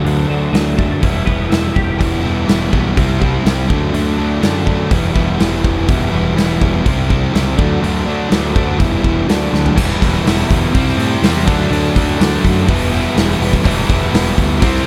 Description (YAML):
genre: quiet-loud alternative rock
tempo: 124 BPM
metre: 4/4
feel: straight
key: E minor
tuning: A4 = 440 Hz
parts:
  - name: twelve-string electric guitar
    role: arpeggios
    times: 0.0-2.0 s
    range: D3 to G4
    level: -24 LUFS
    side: equal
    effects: ensemble chorus
  - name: crunchy overdriven guitar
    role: riff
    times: 0.0-14.9 s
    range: C3 to E4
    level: -20 LUFS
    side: equal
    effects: none
  - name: growling picked electric bass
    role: bass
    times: 0.1-14.8 s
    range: E1 to A2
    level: -22 LUFS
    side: equal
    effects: overdrive
  - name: big rock drum kit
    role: drums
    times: 0.1-14.8 s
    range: crash cymbal, hi-hat, kick drum, snare drum, toms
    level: -19 LUFS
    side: equal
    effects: none
  - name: overdriven electric guitar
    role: riff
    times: 2.0-14.9 s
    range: C3 to E4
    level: -24 LUFS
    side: equal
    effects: none
  - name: distorted electric guitar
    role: riff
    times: 9.8-14.9 s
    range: E2 to D4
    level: -24 LUFS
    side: equal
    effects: overdrive
room: little or no reverb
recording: none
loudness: -15 LUFS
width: mono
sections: 0.0-9.8 A section; 9.8-14.9 B section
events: drum fill 9.5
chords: 0.0 D; 1.0 Em; 3.0 C; 3.7 D; 4.9 Em; 6.9 C; 7.6 D; 8.8 Em; 9.3 D; 9.8 Em; 10.7 C; 11.5 D; 12.7 Em